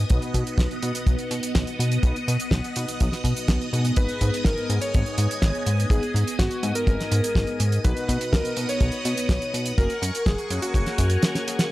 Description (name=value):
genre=italo disco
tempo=124 BPM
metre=4/4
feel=straight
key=unclear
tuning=A4 = 440 Hz
part: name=phased string machine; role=sustained chords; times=0.0-11.7 s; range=B3 to D#6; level=-30 LUFS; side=equal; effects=ensemble chorus, phaser
part: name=analog synth brass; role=stabs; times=0.0-11.7 s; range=G#2 to D#5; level=-34 LUFS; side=left 2 dB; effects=chorus
part: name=chorused synth bass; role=bass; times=0.0-11.2 s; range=F#1 to B2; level=-25 LUFS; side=equal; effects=none
part: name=damped 70s drum kit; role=drums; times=0.1-11.7 s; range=hi-hat, snare drum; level=-28 LUFS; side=right 1 dB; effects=none
part: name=kick drum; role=drums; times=0.1-11.1 s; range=none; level=-22 LUFS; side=equal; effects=none
part: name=warm electric grand piano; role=melody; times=4.0-11.6 s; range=F#4 to C#5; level=-29 LUFS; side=equal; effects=tape echo
room=small room ambience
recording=dry, gritty hardware recording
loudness=-21 LUFS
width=side -17 dB against mid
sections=0.0-11.7 A section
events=filter sweep on analog polysynth 0.0-11.7; drum fill 11.3-11.7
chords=0.1 B; 4.0 G#m; 7.8 B; 9.8 F#add9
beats=| 0.10 0.58 1.07 1.55 | 2.03 2.52 3.00 3.49 | 3.97 4.45 4.94 5.42 | 5.91 6.39 6.87 7.36 | 7.84 8.32 8.81 9.29 | 9.78 10.26 10.74 11.23